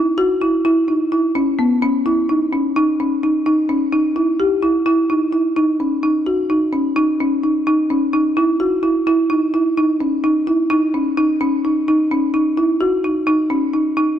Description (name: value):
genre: progressive instrumental, progressive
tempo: 256 BPM (eighths)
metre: 9/8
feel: straight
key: unclear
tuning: A4 = 440 Hz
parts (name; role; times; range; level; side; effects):
- folk marimba with medium mallets; solo; 0.0-14.2 s; B3 to G4; -15 LUFS; equal; none
room: moderate plate reverb, RT60 3.2 s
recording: none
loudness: -15 LUFS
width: side -10 dB against mid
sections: 0.0-14.0 A section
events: none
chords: none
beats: 0.18 0.42 0.65 0.88 1.12 | 1.35 1.58 1.82 2.05 2.29 2.52 2.75 2.99 3.22 | 3.46 3.69 3.92 4.16 4.39 4.62 4.86 5.09 5.33 | 5.56 5.79 6.03 6.26 6.50 6.73 6.96 7.20 7.43 | 7.67 7.90 8.13 8.37 8.60 8.84 9.07 9.30 9.54 | 9.77 10.01 10.24 10.47 10.71 10.94 11.18 11.41 11.64 | 11.88 12.11 12.34 12.58 12.81 13.05 13.28 13.51 13.75 | 13.98